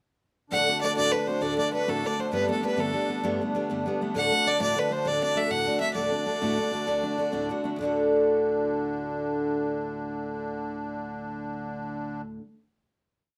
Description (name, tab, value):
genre	celtic folk, Celtic slide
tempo	132 BPM (dotted quarters)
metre	12/8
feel	straight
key	D major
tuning	A4 = 440 Hz
part	clear fiddle	melody	0.5-7.4 s	A4 to F#5	-29 LUFS	equal	none
part	picked steel-string acoustic guitar	accompaniment	0.5-12.5 s	D2 to F#4	-30 LUFS	equal	none
part	accordion	drone	0.5-12.2 s	D3 to D4	-36 LUFS	equal	light tremolo tuning
room	moderate small room reverb, RT60 0.5 s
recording	none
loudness	-27 LUFS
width	mono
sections	0.5-7.8 A section; 7.8-11.4 final chord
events	none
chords	0.5 D; 2.3 Gadd9; 4.1 D